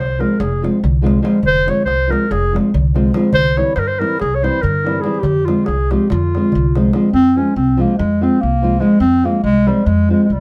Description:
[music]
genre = balkan folk, Balkan wedding band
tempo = 285 BPM (eighths)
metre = 9/8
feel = straight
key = F harmonic minor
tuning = A4 = 438 Hz
[part]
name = mellow clarinet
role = melody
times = 0.0-10.4 s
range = G3 to Db5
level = -18 LUFS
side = equal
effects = none
[part]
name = upright bass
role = bass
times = 0.0-10.4 s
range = F1 to G2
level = -21 LUFS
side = equal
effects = none
[part]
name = nylon-string guitar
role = accompaniment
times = 0.2-10.3 s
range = E3 to F4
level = -20 LUFS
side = equal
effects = none
[part]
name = darbuka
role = percussion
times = 0.2-7.1 s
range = none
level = -25 LUFS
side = equal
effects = none
[sound]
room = wet studio reverb, RT60 0.7 s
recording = heard from further back in the room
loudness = -15 LUFS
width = mono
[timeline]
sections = 0.0-7.1 A section; 7.1-10.4 A section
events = none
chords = 0.0 Fm; 3.3 C; 5.2 Fm

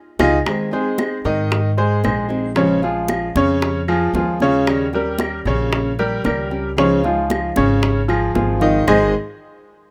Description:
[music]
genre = latin, Cuban son and guajira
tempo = 114 BPM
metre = 4/4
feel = straight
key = Ab major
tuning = A4 = 438 Hz
[part]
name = nylon-string guitar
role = accompaniment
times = 0.2-9.1 s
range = Ab2 to Ab4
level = -25 LUFS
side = equal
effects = none
[part]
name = bright baby grand piano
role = arpeggios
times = 0.2-9.1 s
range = Db3 to Ab5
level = -21 LUFS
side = equal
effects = none
[part]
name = upright bass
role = bass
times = 0.2-9.1 s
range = Ab1 to Ab2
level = -25 LUFS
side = equal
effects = none
[part]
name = bongos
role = percussion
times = 0.2-9.0 s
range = none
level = -28 LUFS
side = equal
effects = none
[part]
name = claves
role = percussion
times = 0.2-9.0 s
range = none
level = -30 LUFS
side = equal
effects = none
[part]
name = congas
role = percussion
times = 0.2-9.0 s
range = none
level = -30 LUFS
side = equal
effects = none
[sound]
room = small room ambience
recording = rough home demo mix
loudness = -18 LUFS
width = mono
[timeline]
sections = 0.5-8.9 A section; 8.9-9.9 B section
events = band accent 0.0-0.5; drum fill 0.2, 8.4-8.9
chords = 0.5 Ab; 2.6 Bbm7; 4.7 Eb7; 6.8 Dbadd9; 8.9 Ab

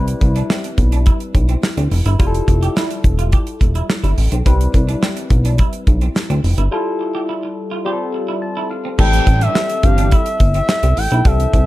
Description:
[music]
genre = early-eighties boogie funk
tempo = 106 BPM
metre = 4/4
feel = straight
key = unclear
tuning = A4 = 435 Hz
[part]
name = barky tine electric piano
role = accompaniment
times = 0.0-11.7 s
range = E3 to A5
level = -24 LUFS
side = left 2 dB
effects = overdrive, phaser
[part]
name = clean electric guitar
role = riff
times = 0.0-11.6 s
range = A3 to G4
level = -28 LUFS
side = right 5 dB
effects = lush chorus
[part]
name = chorused synth bass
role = bass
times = 0.0-11.7 s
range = E1 to D2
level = -15 LUFS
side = equal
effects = none
[part]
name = damped 70s drum kit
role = drums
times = 0.1-11.7 s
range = crash cymbal, hi-hat, kick drum, snare drum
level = -16 LUFS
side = equal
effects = none
[part]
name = expressive synth lead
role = melody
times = 9.0-11.7 s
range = E5 to G5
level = -19 LUFS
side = left 1 dB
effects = chorus
[part]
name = mellow synth brass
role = second line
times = 9.1-10.1 s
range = E3 to G4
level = -25 LUFS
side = right 1 dB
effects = chorus
[sound]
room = small room ambience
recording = none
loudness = -14 LUFS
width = side -17 dB against mid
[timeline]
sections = 0.0-9.0 A section; 9.0-11.7 B section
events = break 6.7-9.0; tine electric piano fill 8.1-9.0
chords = 0.0 Cmaj7; 2.2 Fmaj9; 4.5 Cmaj7; 6.7 Fmaj9; 7.9 G9sus4; 9.0 Am7

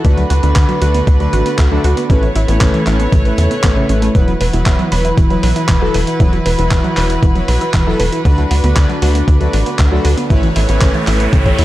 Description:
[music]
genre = italo disco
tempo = 117 BPM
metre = 4/4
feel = straight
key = unclear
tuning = A4 = 437 Hz
[part]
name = rich chamber string section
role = sustained chords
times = 0.0-11.6 s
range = D3 to C#5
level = -20 LUFS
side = right 1 dB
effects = none
[part]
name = wide unison pluck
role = arpeggios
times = 0.0-11.6 s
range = C#3 to B4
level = -20 LUFS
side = right 1 dB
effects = tape echo
[part]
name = analog synth brass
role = stabs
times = 0.0-11.6 s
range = A2 to C#5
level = -20 LUFS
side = left 2 dB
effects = chorus, vintage 12-bit sampler grit
[part]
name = tight sequencer bass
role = bass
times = 0.0-11.6 s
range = E1 to E2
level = -15 LUFS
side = equal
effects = none
[part]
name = dusty soul sampler-style drum kit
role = drums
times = 0.0-11.6 s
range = handclaps, hi-hat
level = -23 LUFS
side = equal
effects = none
[part]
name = electronic kick drum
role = drums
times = 0.0-11.6 s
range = none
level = -13 LUFS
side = equal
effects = none
[part]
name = riser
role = sound effects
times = 9.3-11.6 s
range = none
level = -26 LUFS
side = right 2 dB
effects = none
[sound]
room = moderate lush hall reverb, RT60 1.7 s, digital ambience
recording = dark, warm production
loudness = -11 LUFS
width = side -15 dB against mid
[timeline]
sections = 0.0-11.6 A section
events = riser 9.3-11.6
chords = 0.0 D6; 2.1 Aadd9; 4.2 Esus2; 8.3 D6; 10.3 Aadd9

